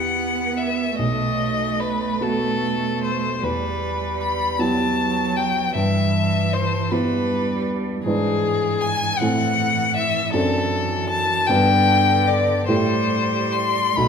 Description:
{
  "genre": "classical, slow romantic movement for piano quartet",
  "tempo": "45-53 BPM (dotted quarters)",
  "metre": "6/8",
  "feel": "rubato",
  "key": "E minor",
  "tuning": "A4 = 440 Hz",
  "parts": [
    { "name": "clear violin", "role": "melody", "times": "0.0-14.1 s", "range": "G#4 to C6", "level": "-22 LUFS", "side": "left 5 dB", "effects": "none" },
    { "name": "rich cello", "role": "second line", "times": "0.0-14.1 s", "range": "D3 to B3", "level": "-26 LUFS", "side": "right 8 dB", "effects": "none" },
    { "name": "warm grand piano", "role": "accompaniment", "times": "0.0-14.1 s", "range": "B1 to B4", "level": "-22 LUFS", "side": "right 1 dB", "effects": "none" }
  ],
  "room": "wet recital hall reverb, RT60 1.8 s",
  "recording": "none",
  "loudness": "-18 LUFS",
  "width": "side -6 dB against mid",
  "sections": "0.0-14.1 A section",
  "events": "none",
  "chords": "0.0 Em; 1.0 B7; 3.4 Em; 5.8 Em/G; 8.1 E7/G#; 9.2 Am; 10.3 D7/F#; 11.5 G; 12.7 Am7"
}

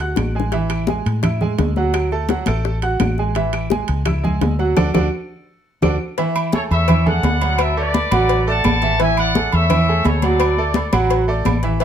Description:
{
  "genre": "latin, salsa",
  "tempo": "170 BPM",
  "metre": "4/4",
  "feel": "straight",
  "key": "A major",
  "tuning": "A4 = 440 Hz",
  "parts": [
    { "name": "bright concert grand piano", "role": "accompaniment", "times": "0.0-11.8 s", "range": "E3 to F#6", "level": "-21 LUFS", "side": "right 3 dB", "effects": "none" },
    { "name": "fingered electric bass", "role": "bass", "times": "0.0-11.8 s", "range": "A1 to A2", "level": "-20 LUFS", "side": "equal", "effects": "none" },
    { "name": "timbales and agogo bells", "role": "percussion", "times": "0.0-11.8 s", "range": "none", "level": "-26 LUFS", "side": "right 7 dB", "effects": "none" },
    { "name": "bongos and cowbell", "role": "percussion", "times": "0.2-11.8 s", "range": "none", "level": "-25 LUFS", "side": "left 11 dB", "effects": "none" },
    { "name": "claves", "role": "percussion", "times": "0.2-11.6 s", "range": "none", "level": "-33 LUFS", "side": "left 4 dB", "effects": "none" },
    { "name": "congas", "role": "percussion", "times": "0.2-11.8 s", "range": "none", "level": "-22 LUFS", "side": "left 1 dB", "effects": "none" },
    { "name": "bright trumpet section", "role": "melody", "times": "6.5-10.9 s", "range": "A4 to A5", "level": "-20 LUFS", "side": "left 1 dB", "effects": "plate reverb" }
  ],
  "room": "moderate studio reverb, RT60 0.8 s",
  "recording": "none",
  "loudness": "-15 LUFS",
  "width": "side -9 dB against mid",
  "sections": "0.0-6.2 A section; 6.2-11.8 B section",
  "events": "drum fill 0.0-0.5, 5.1-6.2; band accent 4.8-6.2",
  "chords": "0.0 D; 0.5 A5; 1.9 D; 3.4 Amaj7; 4.8 D; 6.2 Amaj7; 7.6 D; 9.0 Amaj7; 10.4 D"
}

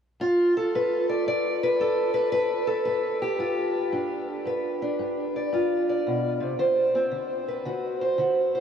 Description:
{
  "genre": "acoustic country blues, solo or duo",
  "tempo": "113 BPM",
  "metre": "4/4",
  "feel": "swing 67% on 8ths",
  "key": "G mixolydian",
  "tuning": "A4 = 441 Hz",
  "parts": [
    { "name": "fingerpicked steel-string acoustic guitar", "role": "solo", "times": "0.2-8.6 s", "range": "G2 to D5", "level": "-23 LUFS", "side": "equal", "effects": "lush chorus, diffuse ambient delay" }
  ],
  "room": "wet huge ambient reverb, RT60 7.0 s",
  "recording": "dreamy mix soaked in reverb, faint mains hum",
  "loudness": "-23 LUFS",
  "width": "side -8 dB against mid",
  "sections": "0.2-8.6 A section",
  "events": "none",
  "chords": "0.2 G7; 6.6 D7"
}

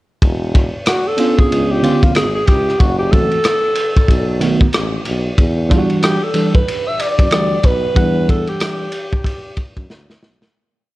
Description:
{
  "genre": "hip hop, jazz-hop",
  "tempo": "93 BPM",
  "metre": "4/4",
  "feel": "swing 60% on 16ths",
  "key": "E minor",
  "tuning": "A4 = 440 Hz",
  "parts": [
    { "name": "warm tuba", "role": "bass", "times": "0.2-10.5 s", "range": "E1 to F#2", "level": "-20 LUFS", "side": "equal", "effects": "none" },
    { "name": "crunchy breakbeat drum kit", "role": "drums", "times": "0.2-10.5 s", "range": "hi-hat, kick drum, ride cymbal, rim click, snare drum", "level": "-16 LUFS", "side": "equal", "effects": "none" },
    { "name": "breathy alto saxophone", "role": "melody", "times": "0.9-9.8 s", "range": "E#4 to E5", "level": "-18 LUFS", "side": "equal", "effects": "slapback echo" },
    { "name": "tine electric piano", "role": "accompaniment", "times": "1.2-8.9 s", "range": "D3 to F#5", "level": "-18 LUFS", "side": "right 2 dB", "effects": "none" }
  ],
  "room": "small room ambience",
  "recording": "none",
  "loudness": "-13 LUFS",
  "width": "side -18 dB against mid",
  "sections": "0.2-10.5 A section",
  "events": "fade-out 8.0-10.5; drum fill 9.9-10.5",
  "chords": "0.2 E5; 1.5 C#7b9; 2.8 F#m7b5; 4.1 B7; 5.4 Em9"
}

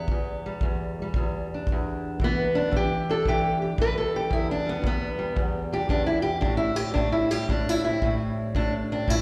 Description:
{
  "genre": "acoustic country blues, solo or duo",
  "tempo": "114 BPM",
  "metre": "4/4",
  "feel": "swing 67% on 8ths",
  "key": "E minor",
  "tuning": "A4 = 440 Hz",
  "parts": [
    { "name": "fingerpicked steel-string acoustic guitar", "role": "melody", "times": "0.0-9.2 s", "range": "E2 to B4", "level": "-27 LUFS", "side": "equal", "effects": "slapback echo" },
    { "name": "kick drum", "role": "drums", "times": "0.1-9.2 s", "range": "none", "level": "-30 LUFS", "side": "equal", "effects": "none" }
  ],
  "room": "light reverb, studio ambience",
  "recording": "live gig heard through the venue's PA, recital hall reverb",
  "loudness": "-26 LUFS",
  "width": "mono",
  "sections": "0.0-9.2 A section",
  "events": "steel-string acoustic guitar solo 0.0-9.2",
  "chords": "0.0 Em7; 6.4 Am7"
}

